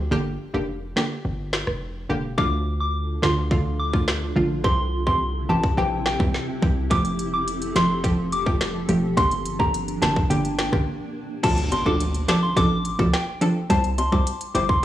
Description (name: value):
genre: dancehall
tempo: 106 BPM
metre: 4/4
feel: straight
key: D minor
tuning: A4 = 440 Hz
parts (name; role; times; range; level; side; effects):
- hard-hitting 808-style bass; bass; 0.0-14.8 s; E1 to D2; -27 LUFS; equal; none
- analog pluck; accompaniment; 0.1-14.7 s; D3 to C5; -24 LUFS; right 1 dB; chorus, sidechain pumping
- island pop drum kit; drums; 1.0-14.8 s; crash cymbal, hi-hat, kick drum, rim click, snare drum; -25 LUFS; equal; none
- soft synth bell; melody; 2.4-14.8 s; G5 to D6; -26 LUFS; left 1 dB; chorus, phaser, analog delay
- granular cloud pad; sustained chords; 2.9-11.4 s; C3 to A4; -32 LUFS; equal; built-in reverb, sidechain pumping
- bongos; percussion; 11.4-14.7 s; none; -32 LUFS; left 4 dB; none
- impact; sound effects; 11.4-13.7 s; none; -32 LUFS; equal; none
room: digital ambience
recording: dry, gritty hardware recording, studio reverb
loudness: -20 LUFS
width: side -13 dB against mid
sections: 0.0-2.4 A section; 2.4-11.4 B section; 11.4-14.8 C section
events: kick muted 0.1-2.4; break 10.9-11.4; impact 11.4-13.7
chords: 0.1 Gm; 2.4 Dm; 4.6 C; 6.9 Fadd9; 9.2 Gm; 11.4 Dm; 13.7 C